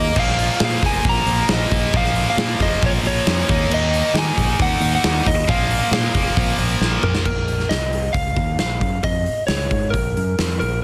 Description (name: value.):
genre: hard rock.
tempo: 135 BPM.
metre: 4/4.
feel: straight.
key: Bb minor.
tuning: A4 = 441 Hz.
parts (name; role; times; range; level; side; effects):
lightly driven lead guitar; melody; 0.0-10.8 s; Bb4 to Bb5; -25 LUFS; equal; none.
heavy high-gain guitar; riff; 0.0-7.3 s; Bb2 to Eb4; -24 LUFS; equal; distortion.
growling fingered electric bass; bass; 0.0-10.8 s; F1 to Eb3; -25 LUFS; equal; overdrive.
big rock drum kit; drums; 0.2-10.7 s; crash cymbal, hi-hat, kick drum, snare drum, toms; -24 LUFS; equal; none.
room: small room ambience.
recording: dense, heavily limited modern master.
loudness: -19 LUFS.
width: mono.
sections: 0.0-7.3 A section; 7.3-10.8 B section.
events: drum fill 6.8-7.3.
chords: 0.2 Bb5; 3.5 Eb5; 5.5 Bb5; 7.3 N.C.; 7.7 Cm; 8.2 Bbm.